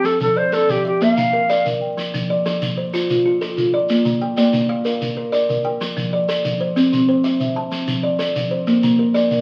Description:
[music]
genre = southern african traditional, mbira-style interlocking cycle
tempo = 126 BPM (dotted quarters)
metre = 12/8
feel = straight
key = F major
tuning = A4 = 441 Hz
[part]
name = bright Native American-style cedar flute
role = melody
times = 0.0-1.7 s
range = G4 to F5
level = -19 LUFS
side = equal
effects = none
[part]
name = kalimba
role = arpeggios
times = 0.0-9.4 s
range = F3 to A5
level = -22 LUFS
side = equal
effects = none
[part]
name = marimba with soft mallets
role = arpeggios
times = 0.0-9.4 s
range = F3 to A5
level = -25 LUFS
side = equal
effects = none
[part]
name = shekere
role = percussion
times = 0.0-9.4 s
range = none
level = -29 LUFS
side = equal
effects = none
[sound]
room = wet small room reverb, RT60 0.6 s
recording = very old 78 rpm record, vinyl crackle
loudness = -19 LUFS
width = mono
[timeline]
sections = 0.0-2.0 A section; 2.0-9.4 B section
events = none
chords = 0.1 F; 1.0 Bb; 2.0 F; 3.9 Bb; 5.8 F; 6.8 C; 7.7 F; 8.7 Bb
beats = | 0.05 0.53 1.01 1.50 | 1.98 2.46 2.94 3.42 | 3.89 4.37 4.85 5.33 | 5.81 6.29 6.76 7.24 | 7.72 8.20 8.67 9.15

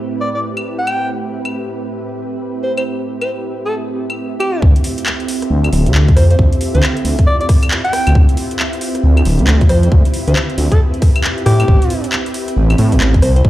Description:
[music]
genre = UK garage, two-step garage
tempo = 136 BPM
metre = 4/4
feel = swing 62% on 16ths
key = D dorian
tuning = A4 = 437 Hz
[part]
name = soft string machine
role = sustained chords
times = 0.0-13.5 s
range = A2 to B4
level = -26 LUFS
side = right 1 dB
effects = ensemble chorus, sidechain pumping
[part]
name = ethereal airy pad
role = texture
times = 0.0-13.5 s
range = A3 to E5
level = -23 LUFS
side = right 3 dB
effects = ensemble chorus, built-in reverb, sidechain pumping
[part]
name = breathy alto saxophone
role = melody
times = 0.2-13.4 s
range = G4 to G5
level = -21 LUFS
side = equal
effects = dub echo
[part]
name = garage drum kit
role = drums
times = 0.6-13.4 s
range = claves, handclaps, hi-hat, rim click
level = -21 LUFS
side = equal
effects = overdrive
[part]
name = dark detuned saw bass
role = bass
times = 4.6-13.5 s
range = D1 to A2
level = -11 LUFS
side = equal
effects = none
[part]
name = electronic kick drum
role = drums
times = 4.6-13.5 s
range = none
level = -10 LUFS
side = equal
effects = none
[sound]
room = little or no reverb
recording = played on a big sound system in a bare room, large studio reverb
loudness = -12 LUFS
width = side -15 dB against mid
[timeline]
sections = 0.0-4.6 A section; 4.6-13.5 B section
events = drop 4.6-13.5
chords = 0.0 Am9; 4.6 Dm9; 11.5 Am9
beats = 0.21 0.65 | 1.09 1.53 1.98 2.42 | 2.86 3.30 3.74 4.18 | 4.62 5.06 5.50 5.95 | 6.39 6.83 7.27 7.71 | 8.15 8.59 9.04 9.48 | 9.92 10.36 10.80 11.24 | 11.68 12.12 12.56 13.01 | 13.45

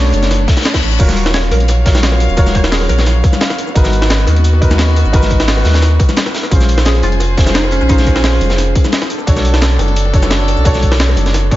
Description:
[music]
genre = liquid drum and bass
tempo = 174 BPM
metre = 4/4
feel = straight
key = Eb minor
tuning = A4 = 442 Hz
[part]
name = warm baby grand piano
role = accompaniment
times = 0.0-11.6 s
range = Db4 to C#5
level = -20 LUFS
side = right 1 dB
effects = dub echo
[part]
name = warm chamber string section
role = sustained chords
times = 0.0-11.6 s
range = Gb3 to F5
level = -23 LUFS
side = left 1 dB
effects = sidechain pumping
[part]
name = warm sub bass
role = bass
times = 0.0-11.6 s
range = Eb1 to Fb2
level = -13 LUFS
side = equal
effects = none
[part]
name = breakbeat sampler-style drum kit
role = drums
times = 0.1-11.6 s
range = crash cymbal, hi-hat, shaker, snare drum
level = -18 LUFS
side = equal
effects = none
[part]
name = crunchy breakbeat drum kit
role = drums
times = 0.1-11.6 s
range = hi-hat, snare drum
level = -24 LUFS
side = equal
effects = high-pass filter on hats, high-pass filter on snare, high-pass filter on room
[part]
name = reverse cymbal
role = sound effects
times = 0.4-1.0 s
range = none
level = -24 LUFS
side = left 8 dB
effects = none
[part]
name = electronic kick drum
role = drums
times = 0.5-11.6 s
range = none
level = -12 LUFS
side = equal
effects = none
[part]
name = bongos and congas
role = percussion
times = 1.1-11.6 s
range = none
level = -24 LUFS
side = left 5 dB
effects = none
[part]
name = hollow square pluck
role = melody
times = 1.3-3.4, 6.9-8.4 s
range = Db4 to Db5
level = -23 LUFS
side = equal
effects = lush chorus, cassette tape, dub echo
[sound]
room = studio reverb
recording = nothing above 7.6 kHz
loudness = -10 LUFS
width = side -15 dB against mid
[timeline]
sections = 0.0-11.6 A section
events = reverse cymbal 0.4-1.0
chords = 0.0 Bm9; 1.0 Ebm9; 3.8 Abm9; 6.5 Bbm9; 9.1 Bm9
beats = 0.31 0.65 | 1.00 1.34 1.69 2.03 | 2.38 2.72 3.07 3.41 | 3.76 4.10 4.45 4.79 | 5.13 5.48 5.83 6.17 | 6.51 6.86 7.20 7.55 | 7.89 8.24 8.58 8.93 | 9.27 9.62 9.96 10.31 | 10.65 11.00 11.34

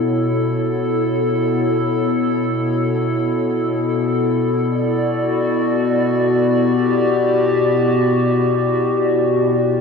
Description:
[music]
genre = ambient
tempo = free time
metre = none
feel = none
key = unclear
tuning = A4 = 440 Hz
[part]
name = warbly tape-like pad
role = solo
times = 0.0-9.8 s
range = B2 to D5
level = -15 LUFS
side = left 1 dB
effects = chorus, built-in reverb, tape echo
[sound]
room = wet huge ambient reverb, RT60 8.3 s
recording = cassette tape, studio ambience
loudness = -15 LUFS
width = side -5 dB against mid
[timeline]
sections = 0.0-9.8 A section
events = none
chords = 0.0 B9sus4; 3.3 Em9/B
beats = free time

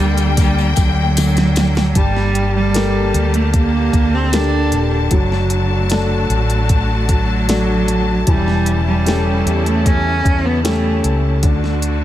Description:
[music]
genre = pop ballad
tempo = 76 BPM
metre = 4/4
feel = straight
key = G harmonic minor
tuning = A4 = 441 Hz
[part]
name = clear cello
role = melody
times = 0.0-11.2 s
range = F#3 to D4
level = -19 LUFS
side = right 3 dB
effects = digital delay
[part]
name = dark baby grand piano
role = accompaniment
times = 0.0-12.0 s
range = D3 to Bb4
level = -22 LUFS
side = left 2 dB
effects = none
[part]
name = bright studio string section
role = sustained chords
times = 0.0-12.0 s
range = C#3 to A5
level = -22 LUFS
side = left 2 dB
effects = none
[part]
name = mellow fretless electric bass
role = bass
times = 0.0-12.0 s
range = Eb1 to E2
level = -18 LUFS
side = equal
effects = ensemble chorus
[part]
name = smooth R&B drum kit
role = drums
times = 0.2-12.0 s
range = hi-hat, kick drum, snare drum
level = -18 LUFS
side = equal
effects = none
[part]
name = tambourine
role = percussion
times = 0.2-1.9 s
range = none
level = -32 LUFS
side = left 10 dB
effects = none
[sound]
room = little or no reverb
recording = none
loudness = -13 LUFS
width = side -13 dB against mid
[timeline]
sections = 0.0-2.0 A section; 2.0-12.0 B section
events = drum fill 1.2-2.0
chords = 0.0 Gm; 2.0 Gmadd9; 5.1 D/F#; 8.3 A7/E; 11.4 D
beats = 0.38 1.17 | 1.96 2.75 3.54 4.33 | 5.12 5.91 6.70 7.48 | 8.27 9.06 9.85 10.64 | 11.43

